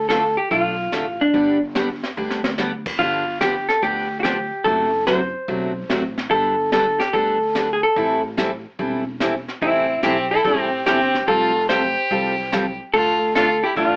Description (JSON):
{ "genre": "country, western swing", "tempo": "145 BPM", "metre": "4/4", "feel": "swing 68% on 8ths", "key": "unclear", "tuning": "A4 = 440 Hz", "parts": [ { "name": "vintage hollow-body jazz guitar", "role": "melody", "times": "0.0-14.0 s", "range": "D4 to C5", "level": "-21 LUFS", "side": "equal", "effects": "none" }, { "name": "upright bass", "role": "bass", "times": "0.0-14.0 s", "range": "E1 to D2", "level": "-34 LUFS", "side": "equal", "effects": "none" }, { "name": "picked steel-string acoustic guitar", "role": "accompaniment", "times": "0.1-14.0 s", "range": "C3 to A4", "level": "-26 LUFS", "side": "equal", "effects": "none" }, { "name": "jazz brush drum kit", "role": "drums", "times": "0.1-14.0 s", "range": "brushed snare drum, crash cymbal, hi-hat, kick drum, snare drum", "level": "-30 LUFS", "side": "equal", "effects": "none" }, { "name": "clear fiddle", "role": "second line", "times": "9.6-14.0 s", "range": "C4 to G4", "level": "-25 LUFS", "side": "equal", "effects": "none" } ], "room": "moderate club reverb, RT60 0.5 s", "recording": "AM radio sound", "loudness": "-20 LUFS", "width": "mono", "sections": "0.0-14.0 A section", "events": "drum fill 2.2-2.6", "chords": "0.0 Dm; 1.3 G; 3.0 G7; 4.7 D7/F#; 6.3 Gadd9; 8.0 Am7; 11.3 Fadd9; 12.9 Dm" }